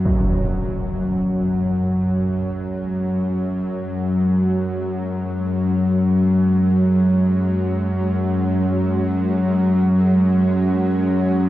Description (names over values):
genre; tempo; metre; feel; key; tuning
dark ambient drone; free time; none; none; unclear; A4 = 442 Hz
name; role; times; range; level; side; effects
granular cloud pad; sustained chords; 3.8-11.5 s; G#3 to F#4; -28 LUFS; right 1 dB; built-in reverb, shimmer reverb
bowed-like drone; drone; 0.0-11.5 s; F#2 to F#3; -17 LUFS; equal; built-in reverb
room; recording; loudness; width
wet cathedral reverb, RT60 6.0 s; worn, warbling old tape, cassette tape, warbly pitch drift; -17 LUFS; side -14 dB against mid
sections
0.1-11.5 A section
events
fade-in on ambient pad 0.1-11.5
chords
0.1 F#sus2